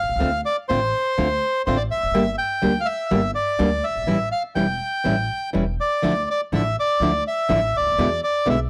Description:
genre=tango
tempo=124 BPM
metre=4/4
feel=rubato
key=D minor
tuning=A4 = 440 Hz
part: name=bandoneon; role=melody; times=0.0-8.6 s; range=C5 to G5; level=-24 LUFS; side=equal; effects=none
part: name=upright bass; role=bass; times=0.0-8.7 s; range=E1 to E2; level=-30 LUFS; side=equal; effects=none
part: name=nylon-string guitar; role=accompaniment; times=0.2-8.6 s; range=B2 to G4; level=-24 LUFS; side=equal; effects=none
room=moderate studio reverb, RT60 0.6 s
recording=dry, gritty hardware recording, transformer saturation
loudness=-22 LUFS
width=mono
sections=0.0-8.7 A section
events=none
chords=0.2 Dm7; 2.1 Gm; 4.1 A7; 6.0 Dmadd9; 8.0 E7

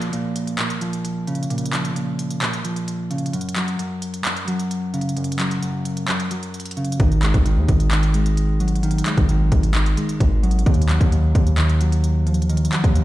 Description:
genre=hip hop, trap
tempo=131 BPM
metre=4/4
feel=half-time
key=Bb minor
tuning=A4 = 438 Hz
part: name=mellow electric guitar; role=accompaniment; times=0.0-13.0 s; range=Gb2 to Ab3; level=-22 LUFS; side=equal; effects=spring reverb
part: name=trap drum kit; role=drums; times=0.0-13.0 s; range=handclaps, hi-hat, kick drum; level=-23 LUFS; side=equal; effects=vintage 12-bit sampler grit
part: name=distorted 808-style bass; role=bass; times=7.0-13.0 s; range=Ab1 to Eb2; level=-18 LUFS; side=equal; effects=distortion
room=little or no reverb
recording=played on a big sound system in a bare room, large studio reverb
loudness=-18 LUFS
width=side -16 dB against mid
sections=0.0-13.0 A section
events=break 0.0-7.0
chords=0.0 Bbm; 3.3 Gb5; 7.0 Ab5; 10.7 Ebmadd9

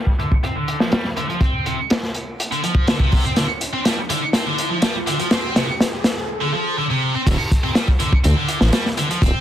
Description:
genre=breakbeat, breaks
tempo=123 BPM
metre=4/4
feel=straight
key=D minor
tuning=A4 = 440 Hz
part: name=heavy high-gain guitar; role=riff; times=0.0-9.4 s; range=C3 to C4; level=-22 LUFS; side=equal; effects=distortion, vintage 12-bit sampler grit, low-pass filter, dub echo
part: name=riser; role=sound effects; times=1.4-6.3 s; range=none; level=-31 LUFS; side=right 1 dB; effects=none
part: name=crunchy breakbeat drum kit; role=drums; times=0.1-9.3 s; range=crash cymbal, hi-hat, kick drum, snare drum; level=-18 LUFS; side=equal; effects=low-pass filter on kick, low-pass filter on hats, low-pass filter on cymbals, low-pass filter on snare, low-pass filter on room
part: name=detuned saw bass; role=bass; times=7.3-9.3 s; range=D1 to D2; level=-17 LUFS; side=equal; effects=none
room=light reverb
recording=dense, heavily limited modern master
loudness=-17 LUFS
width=side -11 dB against mid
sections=0.0-7.3 A section; 7.3-9.4 B section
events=build-up 0.0-7.3; riser 1.4-6.3; drum fill 3.4-6.3; drop 7.3-9.4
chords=0.0 Dm7; 7.3 D7(no3)

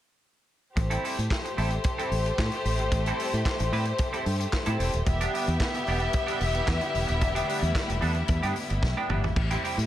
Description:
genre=disco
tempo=112 BPM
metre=4/4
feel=straight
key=A minor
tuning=A4 = 439 Hz
part: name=warm symphonic violin section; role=second line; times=0.8-9.3 s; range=A3 to E5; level=-30 LUFS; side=left 2 dB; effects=none
part: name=semi-hollow electric guitar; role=accompaniment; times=0.8-9.8 s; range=G3 to B4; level=-33 LUFS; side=right 3 dB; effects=analog chorus
part: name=fingered electric bass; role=bass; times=0.8-9.9 s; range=D#1 to A2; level=-27 LUFS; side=equal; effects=none
part: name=vintage drum kit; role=drums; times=0.8-9.9 s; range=crash cymbal, handclaps, hi-hat, kick drum, snare drum, toms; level=-30 LUFS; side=equal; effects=none
part: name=clear studio string section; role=sustained chords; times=5.1-9.9 s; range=C3 to E4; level=-35 LUFS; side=left 2 dB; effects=none
room=light reverb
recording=none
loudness=-24 LUFS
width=side -12 dB against mid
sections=0.8-9.4 A section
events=drum fill 8.8-9.4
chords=0.8 Am7; 5.1 Em7; 9.4 Am7

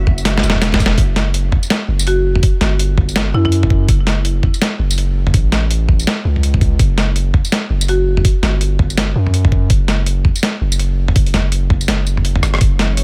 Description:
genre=half-time drum and bass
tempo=165 BPM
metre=4/4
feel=swing 60% on 16ths, half-time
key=F# phrygian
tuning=A4 = 440 Hz
part: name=rich symphonic cello section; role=sustained chords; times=0.0-1.0, 12.6-13.0 s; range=C#3 to E5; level=-34 LUFS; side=equal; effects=none
part: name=long sustained 808-style bass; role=bass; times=0.0-13.0 s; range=E1 to F#2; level=-18 LUFS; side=equal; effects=tube saturation
part: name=boom bap sampler-style drum kit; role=drums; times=0.1-13.0 s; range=hi-hat, rim click, snare drum, tambourine, toms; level=-20 LUFS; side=equal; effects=none
part: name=electronic kick drum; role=drums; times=0.1-12.7 s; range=none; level=-17 LUFS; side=equal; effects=overdrive
part: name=marimba with hard mallets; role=melody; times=2.1-3.5, 7.9-8.3 s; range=E4 to F#4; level=-24 LUFS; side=equal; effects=delay
room=little or no reverb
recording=none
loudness=-15 LUFS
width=mono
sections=1.0-13.0 A section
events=drum fill 0.2-1.0, 12.4; drop 1.0-13.0; kick drops out 11.9-12.6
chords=0.0 F#5

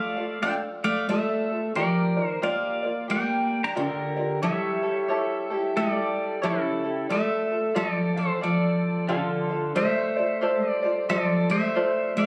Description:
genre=Hawaiian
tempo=90 BPM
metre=4/4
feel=swing 62% on 8ths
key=D minor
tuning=A4 = 440 Hz
part: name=pedal steel guitar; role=melody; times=0.0-12.3 s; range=E4 to Bb5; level=-30 LUFS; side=equal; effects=none
part: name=picked steel-string acoustic guitar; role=second line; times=0.0-12.3 s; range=C#3 to D4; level=-30 LUFS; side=equal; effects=none
part: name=tenor ukulele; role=accompaniment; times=0.0-12.3 s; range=E4 to F5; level=-31 LUFS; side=equal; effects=none
room=light reverb, small room reverb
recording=recorded on a phone in the room, club reverb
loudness=-25 LUFS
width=mono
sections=0.0-9.8 A section; 9.8-12.3 A section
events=none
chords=0.0 Dm; 1.8 Gm7; 4.4 A7; 7.1 Dm; 9.8 Dm7

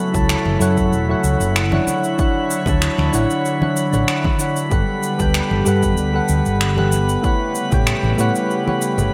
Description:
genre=sunset chillout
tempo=95 BPM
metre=4/4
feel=straight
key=G lydian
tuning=A4 = 440 Hz
part: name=soft electric-piano-like synth keys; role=accompaniment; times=0.0-9.1 s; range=D3 to A5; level=-22 LUFS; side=equal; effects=chorus, digital delay
part: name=airy breathy pad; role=sustained chords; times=0.0-9.1 s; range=C#3 to C#5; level=-27 LUFS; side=equal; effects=chorus
part: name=drifting glass-harmonics texture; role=texture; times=0.0-9.1 s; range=B5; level=-31 LUFS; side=equal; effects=chorus, built-in reverb
part: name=mellow fretless electric bass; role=bass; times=0.1-9.1 s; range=E1 to A2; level=-22 LUFS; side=equal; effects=none
part: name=electronic kick drum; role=drums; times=0.1-7.8 s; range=none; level=-23 LUFS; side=equal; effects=none
part: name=electronic shaker and finger snaps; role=drums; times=0.1-9.1 s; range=none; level=-27 LUFS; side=equal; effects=gated reverb
part: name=congas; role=percussion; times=0.5-9.1 s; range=none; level=-28 LUFS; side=equal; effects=none
room=moderate lush hall reverb, RT60 1.9 s, digital ambience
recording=bright 1980s-style digital production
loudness=-18 LUFS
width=mono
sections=0.0-9.1 A section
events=none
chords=0.0 F#m7; 1.9 Dmaj9; 4.7 Gmaj7; 7.2 A13

